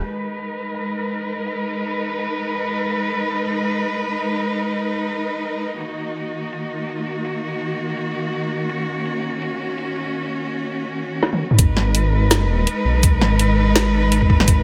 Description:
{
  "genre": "half-time drum and bass",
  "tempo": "166 BPM",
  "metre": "4/4",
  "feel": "swing 57% on 16ths, half-time",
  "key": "G# minor",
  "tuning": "A4 = 440 Hz",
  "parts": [
    { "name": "warm symphonic cello section", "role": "sustained chords", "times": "0.0-14.6 s", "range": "D#3 to B4", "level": "-24 LUFS", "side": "equal", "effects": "sidechain pumping, low-pass filter" },
    { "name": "drum and bass drum kit", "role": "drums", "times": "0.0-14.6 s", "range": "hi-hat, shaker, snare drum, toms", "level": "-22 LUFS", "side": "equal", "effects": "low-pass filter on hats, low-pass filter on perc, low-pass filter on snare, low-pass filter on toms, low-pass filter on room" },
    { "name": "dark detuned saw bass", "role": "bass", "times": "11.6-14.6 s", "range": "G#1 to B1", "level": "-20 LUFS", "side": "equal", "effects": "none" },
    { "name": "electronic kick drum", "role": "drums", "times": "11.6-14.6 s", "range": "none", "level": "-18 LUFS", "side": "equal", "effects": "none" }
  ],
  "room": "moderate echo chamber reverb, RT60 1.7 s, digital ambience",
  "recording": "none",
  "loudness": "-21 LUFS",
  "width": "mono",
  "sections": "0.0-11.6 A section; 11.6-14.6 B section",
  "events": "drum fill 11.2-11.6; drop 11.6-14.6",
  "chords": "0.0 G#m; 5.8 D#m; 11.6 G#m",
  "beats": "| 0.02 0.38 0.74 1.11 | 1.47 1.83 2.19 2.55 | 2.91 3.27 3.64 4.00 | 4.36 4.72 5.08 5.44 | 5.81 6.17 6.53 6.89 | 7.25 7.61 7.97 8.34 | 8.70 9.06 9.42 9.78 | 10.14 10.50 10.87 11.23 | 11.59 11.95 12.31 12.67 | 13.04 13.40 13.76 14.12 | 14.48"
}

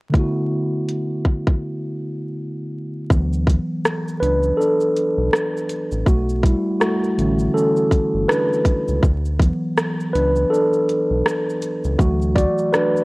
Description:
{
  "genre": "lo-fi hip hop",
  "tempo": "81 BPM",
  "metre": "4/4",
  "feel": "swing 58% on 16ths",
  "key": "D major",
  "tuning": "A4 = 440 Hz",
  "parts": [
    { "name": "mellow tine electric piano", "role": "accompaniment", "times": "0.1-13.0 s", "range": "D3 to D5", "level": "-19 LUFS", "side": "equal", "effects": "medium stereo tremolo, low-pass filter" },
    { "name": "drum and bass drum kit", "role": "drums", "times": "0.1-13.0 s", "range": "hi-hat, kick drum, rim click, shaker", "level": "-19 LUFS", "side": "equal", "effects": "none" },
    { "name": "round analog bass", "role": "bass", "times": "3.1-12.5 s", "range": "G1 to D2", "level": "-21 LUFS", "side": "equal", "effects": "none" }
  ],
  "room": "moderate plate reverb, RT60 2.5 s",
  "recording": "worn, warbling old tape, cassette tape, vinyl crackle, warbly pitch drift",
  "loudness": "-17 LUFS",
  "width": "side -25 dB against mid",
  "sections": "0.1-3.1 A section; 3.1-13.0 B section",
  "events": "break 1.6-3.1; tine electric piano solo 3.1-13.0",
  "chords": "0.1 D69; 6.1 Bm11; 9.0 D69; 12.0 Dadd9",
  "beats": "| 0.14 0.88 1.62 2.36 | 3.10 3.84 4.58 5.32 | 6.06 6.80 7.55 8.29 | 9.03 9.77 10.51 11.25 | 11.99 12.73"
}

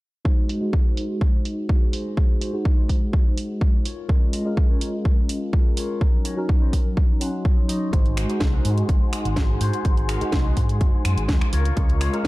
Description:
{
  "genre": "filtered disco house",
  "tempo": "125 BPM",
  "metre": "4/4",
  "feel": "straight",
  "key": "Ab mixolydian",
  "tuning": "A4 = 440 Hz",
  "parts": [
    { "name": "bell-like tine electric piano", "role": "accompaniment", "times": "0.2-12.3 s", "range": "Gb3 to C6", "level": "-28 LUFS", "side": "equal", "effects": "phaser, sidechain pumping, low-pass filter" },
    { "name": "electronic kick drum", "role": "drums", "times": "0.3-12.3 s", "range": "none", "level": "-19 LUFS", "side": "equal", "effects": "overdrive" },
    { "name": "electric guitar with an envelope filter", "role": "riff", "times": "0.5-12.3 s", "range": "Eb4 to Gb5", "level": "-38 LUFS", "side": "left 4 dB", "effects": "vintage 12-bit sampler grit, sidechain pumping, low-pass filter" },
    { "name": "house drum kit", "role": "drums", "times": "0.5-12.3 s", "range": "finger snaps, hi-hat, snare drum", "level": "-30 LUFS", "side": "right 1 dB", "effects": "overdrive, sidechain pumping on hats, low-pass filter on hats, low-pass filter on snare, low-pass filter on room" },
    { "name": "rich studio string section", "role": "sustained chords", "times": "7.9-12.3 s", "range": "Ab4 to Db6", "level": "-33 LUFS", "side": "left 3 dB", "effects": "vintage 12-bit sampler grit, sidechain pumping, low-pass filter" },
    { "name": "overdriven fingered electric bass", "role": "bass", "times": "7.9-12.3 s", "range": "Gb1 to Ab2", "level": "-23 LUFS", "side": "equal", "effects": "sidechain pumping, low-pass filter" }
  ],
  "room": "little or no reverb",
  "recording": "dark, warm production",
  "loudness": "-19 LUFS",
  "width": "side -20 dB against mid",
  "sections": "0.3-12.3 A section",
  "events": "filter sweep on drum 0.3-12.3; filter sweep 0.3-12.3; clean electric guitar fill 7.0-7.9",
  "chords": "0.3 Ab7; 3.9 Db6; 6.0 Ebm7; 7.9 Ab7; 11.5 Db6",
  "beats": "| 0.25 0.73 1.21 1.69 | 2.17 2.65 3.13 3.61 | 4.09 4.57 5.05 5.53 | 6.01 6.49 6.97 7.45 | 7.93 8.41 8.89 9.37 | 9.85 10.33 10.81 11.29 | 11.77 12.25"
}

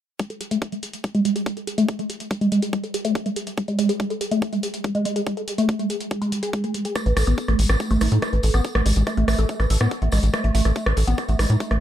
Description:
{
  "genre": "psychedelic trance",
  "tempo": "142 BPM",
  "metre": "4/4",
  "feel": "straight",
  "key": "unclear",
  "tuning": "A4 = 440 Hz",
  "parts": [
    { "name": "woody wave-folded pluck", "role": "riff", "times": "0.2-11.8 s", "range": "G#3 to B4", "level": "-23 LUFS", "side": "moving between left 3 dB and right 3 dB", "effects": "chorus, auto-pan, cassette tape, sidechain pumping, tape echo" },
    { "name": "electronic kick drum", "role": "drums", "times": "0.2-11.7 s", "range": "none", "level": "-27 LUFS", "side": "equal", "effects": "high-pass filter on kick" },
    { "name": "techno drum kit", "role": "drums", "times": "0.2-11.8 s", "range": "hi-hat, rim click", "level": "-29 LUFS", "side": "equal", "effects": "none" },
    { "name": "tambourine", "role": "percussion", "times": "7.0-11.7 s", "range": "none", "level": "-37 LUFS", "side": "left 2 dB", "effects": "none" },
    { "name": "tight sequencer bass", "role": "bass", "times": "7.1-11.8 s", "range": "A1 to A2", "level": "-19 LUFS", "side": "equal", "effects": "none" },
    { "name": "vowel-sweep wobble bass", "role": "second line", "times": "7.7-11.6 s", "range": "G#3 to D#4", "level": "-36 LUFS", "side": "right 5 dB", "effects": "wide subtle chorus, sidechain pumping, high-pass filter, dub echo" }
  ],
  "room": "light reverb, digital ambience",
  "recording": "dark, warm production",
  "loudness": "-20 LUFS",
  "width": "side -11 dB against mid",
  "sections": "0.2-11.8 A section",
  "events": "filter sweep on synth arpeggio sound 0.2-11.8",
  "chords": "0.2 N.C.; 7.0 A5",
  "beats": "| 0.20 0.62 1.04 1.46 | 1.89 2.31 2.73 3.15 | 3.58 4.00 4.42 4.84 | 5.27 5.69 6.11 6.53 | 6.96 7.38 7.80 8.22 | 8.65 9.07 9.49 9.91 | 10.34 10.76 11.18 11.60"
}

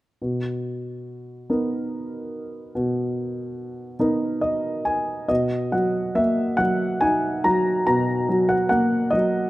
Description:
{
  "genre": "classical, lyrical solo piano",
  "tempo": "47 BPM (dotted quarters)",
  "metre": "6/8",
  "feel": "rubato",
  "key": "B major",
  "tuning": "A4 = 440 Hz",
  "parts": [
    { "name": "dark concert grand piano", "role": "solo", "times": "0.2-9.5 s", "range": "B2 to A#5", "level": "-21 LUFS", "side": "equal", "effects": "none" }
  ],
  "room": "little or no reverb",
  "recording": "close, detailed microphones",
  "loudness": "-20 LUFS",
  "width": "side -17 dB against mid",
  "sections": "0.2-5.3 A section; 5.3-9.5 B section",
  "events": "grand piano fill 4.0-5.3",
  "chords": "0.2 Bmaj7",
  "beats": "| 0.23 1.52 | 2.75 4.00 | 5.30 6.61 | 7.89 9.14"
}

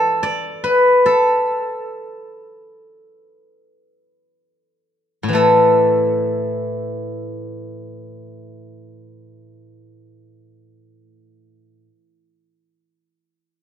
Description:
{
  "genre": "chinese traditional, Chinese solo plucked strings",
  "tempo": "free time",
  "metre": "none",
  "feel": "none",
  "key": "unclear",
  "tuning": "A4 = 440 Hz",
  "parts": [
    { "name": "steel-string zither", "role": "solo", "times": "0.0-11.9 s", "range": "A2 to D5", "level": "-16 LUFS", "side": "left 1 dB", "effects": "none" }
  ],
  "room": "light reverb",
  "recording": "dark, warm production",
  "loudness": "-15 LUFS",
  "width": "side -9 dB against mid",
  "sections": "0.0-5.3 A section; 5.3-10.1 B section",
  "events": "slowing down 0.0-5.3",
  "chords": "none",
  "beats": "free time"
}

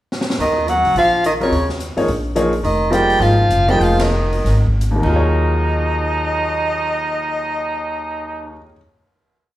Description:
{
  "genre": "modal jazz",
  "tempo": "152-215 BPM",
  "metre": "4/4",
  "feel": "swing 60% on 8ths",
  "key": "Eb dorian",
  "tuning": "A4 = 439 Hz",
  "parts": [
    { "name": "swinging big-band drum kit", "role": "drums", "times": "0.1-5.1 s", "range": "crash cymbal, hi-hat, kick drum, ride cymbal, snare drum", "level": "-28 LUFS", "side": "equal", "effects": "none" },
    { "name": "mellow soprano saxophone", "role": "melody", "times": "0.4-8.6 s", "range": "Db5 to G5", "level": "-20 LUFS", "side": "equal", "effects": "none" },
    { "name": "breathy tenor saxophone", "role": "second line", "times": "0.4-8.6 s", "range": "Db3 to Eb4", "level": "-21 LUFS", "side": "right 1 dB", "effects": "none" },
    { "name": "upright bass", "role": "bass", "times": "0.4-8.6 s", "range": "F1 to Eb2", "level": "-19 LUFS", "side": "equal", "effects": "none" },
    { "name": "clear baby grand piano", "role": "accompaniment", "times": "1.4-8.8 s", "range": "Eb2 to Eb5", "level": "-21 LUFS", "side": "left 1 dB", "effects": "none" }
  ],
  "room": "wet large studio reverb, RT60 0.8 s",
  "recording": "band playing live in one room",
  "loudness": "-15 LUFS",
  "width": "side -14 dB against mid",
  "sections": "0.0-0.4 pickup bar; 0.4-5.2 A section; 5.2-8.3 final hit",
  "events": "drum fill 0.1; slowing down 2.6-5.2; band accent 4.0",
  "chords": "0.4 Ebm9; 2.6 Fm11; 5.0 Ebmadd9; 5.2 Ebm11",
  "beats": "0.12 | 0.41 0.69 0.96 1.24 | 1.52 1.80 2.08 2.36 | 2.64 2.92 3.21 3.50 | 3.80 4.12 4.45 4.80 | 5.18 5.58 5.97 6.37 | 6.76 7.16 7.55 7.95"
}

